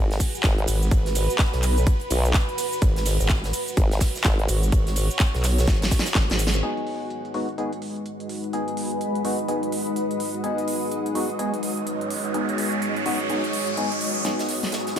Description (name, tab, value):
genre	bass house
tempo	126 BPM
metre	4/4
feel	swing 61% on 16ths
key	G# minor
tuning	A4 = 439 Hz
part	dark analog pad	sustained chords	0.4-15.0 s	G#3 to D#5	-33 LUFS	left 1 dB	chorus, sidechain pumping
part	formant-sweep wobble bass	bass	0.0-4.5 s	G#1 to B1	-22 LUFS	equal	chorus, tube saturation, sidechain pumping
part	granular cloud pad	texture	0.0-15.0 s	G#3 to D#5	-30 LUFS	right 1 dB	built-in reverb, sidechain pumping
part	big-room dance drum kit	drums	0.1-15.0 s	handclaps, hi-hat, ride cymbal, shaker, snare drum	-28 LUFS	right 1 dB	low-pass filter on hats, studio reverb, low-pass filter on cymbals, low-pass filter on perc, low-pass filter on snare
part	tight metal drum kit	drums	0.1-6.5, 14.2-15.0 s	hi-hat, snare drum	-36 LUFS	right 2 dB	high-pass filter on hats, studio reverb, high-pass filter on snare, high-pass filter on room
part	electronic kick drum	drums	0.2-6.3 s	none	-21 LUFS	equal	studio reverb
part	vowel-sweep wobble bass	bass	0.7-6.6 s	G#1 to B1	-22 LUFS	equal	chorus, overdrive, sidechain pumping
part	percussive organ stab	stabs	6.6-15.0 s	G#3 to G#4	-29 LUFS	left 2 dB	lush chorus, sidechain pumping, tape echo
part	riser	sound effects	11.5-15.0 s	none	-30 LUFS	right 3 dB	none
room	light reverb, digital ambience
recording	none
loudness	-21 LUFS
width	side -9 dB against mid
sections	0.0-6.6 A section; 6.6-14.2 B section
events	drop 0.0-6.6; drum fill 5.7-6.6, 14.2-15.0; band accent 6.5; filter sweep on drum 6.6-14.2; riser 11.5-14.2, 14.2-15.0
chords	0.0 G#m